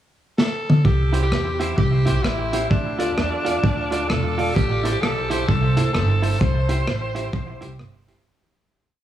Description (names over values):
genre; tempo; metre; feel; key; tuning
ska; 130 BPM; 4/4; swing 62% on 8ths; C major; A4 = 441 Hz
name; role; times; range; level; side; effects
raspy tenor saxophone; melody; 0.4-7.8 s; D4 to C5; -25 LUFS; equal; dub echo
crunchy breakbeat drum kit; drums; 0.4-8.2 s; hi-hat, kick drum, rim click, snare drum, toms; -22 LUFS; equal; none
upright bass; bass; 0.9-8.2 s; E1 to E2; -22 LUFS; equal; none
semi-hollow electric guitar; accompaniment; 1.1-8.2 s; E4 to D5; -27 LUFS; right 3 dB; lush chorus, dub echo
room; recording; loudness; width
light reverb, studio ambience; none; -18 LUFS; side -11 dB against mid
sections
0.0-0.8 pickup bar; 0.8-8.3 A section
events
drum fill 0.4-0.8; fade-out 6.4-8.3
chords
0.0 N.C.; 0.8 C; 2.7 Dm; 4.6 Am; 6.4 C